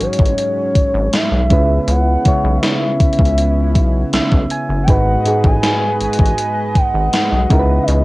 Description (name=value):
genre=contemporary R&B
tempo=80 BPM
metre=4/4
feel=straight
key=C# minor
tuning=A4 = 443 Hz
part: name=gliding portamento lead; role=melody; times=0.0-8.0 s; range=C#5 to G#5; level=-19 LUFS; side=equal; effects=chorus, phaser, cassette tape, analog delay
part: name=soft electric-piano-like synth keys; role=accompaniment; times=0.0-8.0 s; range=G#2 to G#5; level=-20 LUFS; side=right 2 dB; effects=chorus
part: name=chorused pulse-width pad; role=sustained chords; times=0.0-8.0 s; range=C#3 to D#5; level=-24 LUFS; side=equal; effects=none
part: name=rubbery square bass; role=bass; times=0.0-8.0 s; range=F#1 to C#2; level=-17 LUFS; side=equal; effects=none
part: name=gated 80s digital drum machine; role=drums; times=0.0-8.0 s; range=hi-hat, kick drum, snare drum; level=-15 LUFS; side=equal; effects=gated reverb, gated reverb snare, overdrive, cassette tape
room=little or no reverb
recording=home recording on cassette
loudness=-12 LUFS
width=side -20 dB against mid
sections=0.0-8.0 A section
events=synth keys fill 3.8-4.9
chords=0.0 G#7sus4; 1.5 C#m7; 4.9 G#m7; 7.5 C#m9